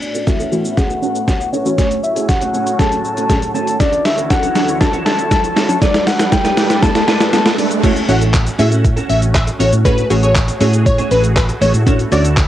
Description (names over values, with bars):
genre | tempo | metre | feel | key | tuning
dance-pop | 119 BPM | 4/4 | straight | A major | A4 = 440 Hz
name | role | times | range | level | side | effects
soft octave-layered synth lead | melody | 0.0-7.8 s | C#5 to A5 | -18 LUFS | left 2 dB | chorus, low-pass filter, cassette tape, plate reverb, analog delay
filtered supersaw swell | sustained chords | 0.0-12.5 s | D2 to C#5 | -25 LUFS | right 1 dB | sidechain pumping, low-pass filter, plate reverb
twelve-string electric guitar | riff | 0.0-12.4 s | A3 to B4 | -22 LUFS | right 4 dB | ensemble chorus, low-pass filter
boom bap sampler-style drum kit | drums | 0.0-12.5 s | crash cymbal, handclaps, hi-hat, kick drum, shaker, snare drum | -16 LUFS | equal | cassette tape
riser | sound effects | 2.1-7.8 s | none | -23 LUFS | right 2 dB | none
wavetable chord stab | accompaniment | 0.3-12.5 s | A2 to C#5 | -20 LUFS | left 1 dB | sidechain pumping, low-pass filter, plate reverb
plucky unison lead | melody | 8.1-12.2 s | B4 to F#5 | -18 LUFS | left 1 dB | sidechain pumping, cassette tape, plate reverb, analog delay
vintage muted fingered electric bass | bass | 8.1-12.5 s | A1 to A2 | -15 LUFS | equal | sidechain pumping
room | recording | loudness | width
light reverb | home recording on cassette | -12 LUFS | side -12 dB against mid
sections
0.0-7.8 A section; 7.8-12.5 B section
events
build-up 0.0-7.8; drum fill 0.0-7.8; filter sweep 0.0-7.8; riser 2.1-7.8; drop 7.8-12.5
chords
0.0 A6; 1.8 F#madd9/A; 3.8 Dmaj7; 5.8 Gadd9; 7.8 A6; 9.9 F#madd9/A; 11.9 Dmaj7